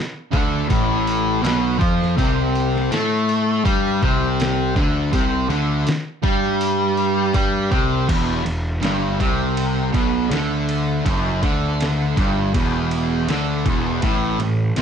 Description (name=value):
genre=stoner and doom metal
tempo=81 BPM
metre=4/4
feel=straight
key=E minor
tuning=A4 = 436 Hz
part: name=fuzz guitar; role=riff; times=0.3-14.8 s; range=E2 to A3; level=-19 LUFS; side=equal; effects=distortion
part: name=fuzz picked electric bass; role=bass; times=0.3-14.8 s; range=E1 to A2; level=-24 LUFS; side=equal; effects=overdrive
part: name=trip hop sampler-style drum kit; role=drums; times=0.3-14.8 s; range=crash cymbal, hi-hat, kick drum, ride cymbal, snare drum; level=-24 LUFS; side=equal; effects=none
room=light reverb, digital ambience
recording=dark, warm production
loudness=-17 LUFS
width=side -7 dB against mid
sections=0.0-8.1 A section; 8.1-14.8 B section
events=kick and snare drop out 7.3-8.1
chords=0.0 A5; 2.2 C5; 8.1 Em; 14.0 A5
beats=0.69 1.43 | 2.17 2.91 3.65 4.39 | 5.13 5.87 6.61 7.35 | 8.09 8.83 9.57 10.31 | 11.06 11.80 12.54 13.28 | 14.03 14.77